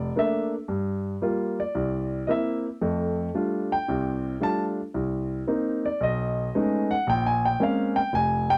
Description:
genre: solo jazz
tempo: 113 BPM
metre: 4/4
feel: swing 67% on 8ths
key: F major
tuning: A4 = 439 Hz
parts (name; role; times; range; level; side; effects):
- warm grand piano; solo; 0.0-8.6 s; F1 to A5; -26 LUFS; equal; none
room: light reverb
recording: dark, warm production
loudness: -26 LUFS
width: mono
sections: 0.0-8.6 A section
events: grand piano solo 0.0-8.6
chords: 0.0 Bbmaj7; 0.7 Gm7; 1.7 C7; 2.8 F69; 4.9 Cm9; 6.0 B13; 7.1 Bbm9

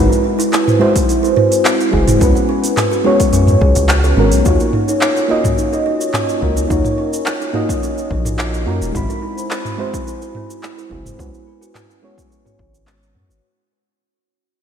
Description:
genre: sunset chillout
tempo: 107 BPM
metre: 4/4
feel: straight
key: Eb minor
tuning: A4 = 439 Hz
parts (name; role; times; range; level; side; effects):
- mellow FM electric piano; accompaniment; 0.0-13.4 s; Ab3 to B5; -17 LUFS; equal; chorus, auto-pan, tape echo
- kalimba; arpeggios; 0.0-13.4 s; C4 to Gb5; -21 LUFS; right 2 dB; low-pass filter, tape echo
- round analog bass; bass; 0.0-13.4 s; Eb1 to Gb2; -16 LUFS; equal; tube saturation
- smooth R&B drum kit; drums; 0.1-13.4 s; handclaps, hi-hat, shaker, toms; -20 LUFS; equal; overdrive
- electronic kick drum; drums; 1.0-12.7 s; none; -20 LUFS; equal; overdrive
room: moderate lush hall reverb, RT60 2.8 s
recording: dreamy mix soaked in reverb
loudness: -13 LUFS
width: side -8 dB against mid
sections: 0.0-4.5 A section; 4.5-13.4 B section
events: fade-out 4.5-13.4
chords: 0.0 Ab7alt; 2.2 Db7sus4; 4.5 Ebm9; 8.9 Ab7alt; 11.2 Db7sus4

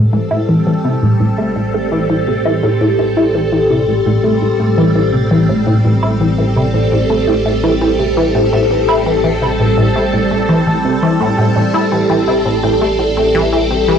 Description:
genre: ambient, sequencer-driven space music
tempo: 84 BPM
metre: 4/4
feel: straight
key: A minor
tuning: A4 = 439 Hz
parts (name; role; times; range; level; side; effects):
- phased string machine; sustained chords; 0.0-14.0 s; G3 to A4; -15 LUFS; equal; ensemble chorus, phaser, cassette tape
- thumb-piano-like synth pluck; arpeggios; 0.0-14.0 s; G4 to A5; -27 LUFS; moving between left 10 dB and left 4 dB; none
- resonant blip pluck; riff; 0.0-14.0 s; A2 to E4; -14 LUFS; equal; phaser, cassette tape, analog delay
- fat analog bass; bass; 0.0-14.0 s; A1; -22 LUFS; equal; none
room: wet studio reverb, RT60 0.6 s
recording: home recording on cassette, lossy compression artefacts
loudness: -11 LUFS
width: side -8 dB against mid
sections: 0.0-14.0 A section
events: none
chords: 0.0 Am7

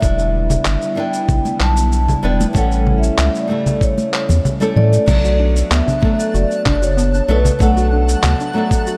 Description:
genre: sunset chillout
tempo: 95 BPM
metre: 4/4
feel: straight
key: B minor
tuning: A4 = 440 Hz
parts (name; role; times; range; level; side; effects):
- vibraphone with soft mallets; melody; 0.0-8.8 s; B4 to A5; -23 LUFS; equal; delay
- flamenco guitar; accompaniment; 0.0-9.0 s; C#3 to B4; -24 LUFS; equal; delay
- airy breathy pad; sustained chords; 0.0-5.1 s; C#3 to E4; -28 LUFS; equal; chorus
- round analog bass; bass; 0.0-8.3 s; E1 to A2; -18 LUFS; equal; none
- dusty soul sampler-style drum kit; drums; 0.0-9.0 s; congas, crash cymbal, handclaps, shaker; -24 LUFS; equal; none
- electronic kick drum; drums; 0.0-8.8 s; none; -19 LUFS; equal; none
- congas; percussion; 1.5-5.0 s; none; -25 LUFS; equal; none
- soft round pluck; arpeggios; 5.1-9.0 s; A3 to F#4; -25 LUFS; equal; chorus, delay
- twinkling granular texture; texture; 5.5-9.0 s; A5 to F#6; -34 LUFS; equal; built-in reverb
room: light reverb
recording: dark, warm production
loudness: -16 LUFS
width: mono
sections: 0.0-5.1 A section; 5.1-9.0 B section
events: none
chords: 0.0 Em7; 2.6 A7; 5.1 Bm7

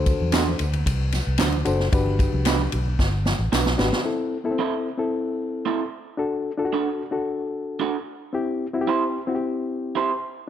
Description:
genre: uptempo 1960s-style soul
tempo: 112 BPM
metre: 4/4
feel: straight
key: unclear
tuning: A4 = 440 Hz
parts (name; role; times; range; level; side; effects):
- reed electric piano; accompaniment; 0.0-10.2 s; B3 to C5; -25 LUFS; left 3 dB; none
- vintage muted fingered electric bass; bass; 0.0-3.9 s; F#1 to E2; -24 LUFS; equal; none
- swinging big-band drum kit; drums; 0.1-4.0 s; kick drum, ride cymbal, snare drum; -24 LUFS; equal; none
- congas; percussion; 0.1-3.8 s; none; -36 LUFS; left 4 dB; none
- tambourine and handclaps; percussion; 0.1-3.9 s; none; -34 LUFS; left 3 dB; none
- electric guitar through a small old amp; stabs; 0.3-10.1 s; C4 to C5; -26 LUFS; right 8 dB; spring reverb
room: light reverb, small room ambience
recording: none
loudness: -21 LUFS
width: side -10 dB against mid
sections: 0.0-4.0 A section; 4.0-10.5 B section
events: drum fill 3.0-4.0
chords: 0.0 D7; 1.9 Gmaj7; 4.0 Am; 6.2 D; 8.3 C

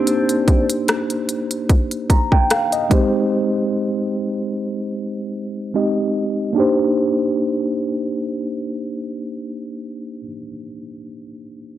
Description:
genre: contemporary R&B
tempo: 74 BPM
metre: 4/4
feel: swing 54% on 16ths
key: C minor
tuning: A4 = 439 Hz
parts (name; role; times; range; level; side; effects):
- mellow tine electric piano; accompaniment; 0.0-11.8 s; Ab3 to Bb5; -20 LUFS; equal; medium stereo tremolo, low-pass filter
- direct-recorded clean electric guitar; arpeggios; 0.0-0.7 s; C4 to C5; -26 LUFS; left 2 dB; lush chorus, low-pass filter, tape echo
- trap drum kit; drums; 0.1-3.1 s; hi-hat, kick drum, rim click; -16 LUFS; equal; none
room: digital ambience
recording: dry, gritty hardware recording, transformer saturation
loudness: -17 LUFS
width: side -12 dB against mid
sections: 0.0-6.6 A section; 6.6-9.8 B section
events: filter sweep 0.0-6.6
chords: 0.0 Cm9; 2.9 Abmaj7; 6.6 Cm9

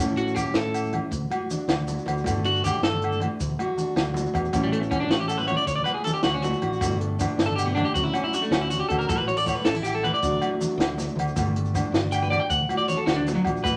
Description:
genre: highlife guitar band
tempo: 105 BPM (dotted quarters)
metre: 12/8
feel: straight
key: unclear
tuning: A4 = 440 Hz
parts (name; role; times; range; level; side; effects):
- fingerpicked plugged-in steel-string acoustic guitar; accompaniment; 0.0-13.8 s; G2 to A4; -33 LUFS; equal; none
- fingered electric bass; bass; 0.0-13.8 s; G1 to A2; -32 LUFS; equal; none
- congas; percussion; 0.0-13.7 s; none; -34 LUFS; equal; none
- electric guitar at the edge of break-up; arpeggios; 0.2-13.8 s; F#3 to G5; -28 LUFS; equal; none
- compact cocktail drum kit; drums; 0.2-13.7 s; hi-hat, kick drum, snare drum; -30 LUFS; equal; none
- maracas; percussion; 0.3-13.7 s; none; -43 LUFS; equal; none
- agogo bells; percussion; 0.4-13.8 s; none; -35 LUFS; equal; none
room: wet studio reverb, RT60 0.7 s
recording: none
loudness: -25 LUFS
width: mono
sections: 0.0-13.8 A section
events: clean electric guitar solo 0.0-13.8; drum fill 8.3-9.1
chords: 0.0 A; 1.1 D; 2.3 Gsus2; 3.4 D; 4.5 A; 5.7 D; 6.8 Gadd9; 8.0 Dmaj7; 9.1 A; 10.2 D; 11.4 Gsus2; 12.5 D

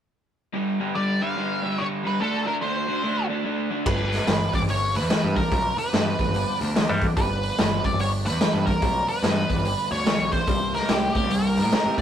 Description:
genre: blues rock power trio and southern rock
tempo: 145 BPM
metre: 4/4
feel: swing 63% on 8ths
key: unclear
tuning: A4 = 440 Hz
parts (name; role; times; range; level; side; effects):
- crunchy overdriven guitar; riff; 0.5-12.0 s; G2 to D4; -27 LUFS; equal; none
- octave-fuzz lead guitar; melody; 1.0-12.0 s; G4 to F5; -26 LUFS; equal; wah, distortion
- overdriven tonewheel organ; sustained chords; 3.9-12.0 s; E3 to G4; -34 LUFS; right 3 dB; chorus vibrato, slow rotary speaker
- growling picked electric bass; bass; 3.9-12.0 s; G1 to C3; -27 LUFS; equal; overdrive
- raw garage drum kit; drums; 3.9-12.0 s; crash cymbal, hi-hat, kick drum, snare drum; -25 LUFS; equal; none
room: moderate stone room reverb, RT60 0.9 s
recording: rough rehearsal-room recording, tube saturation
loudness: -21 LUFS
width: side -9 dB against mid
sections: 0.5-3.9 A section; 3.9-12.0 B section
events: none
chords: 0.5 G5; 2.2 D5; 3.9 G7; 10.5 C7

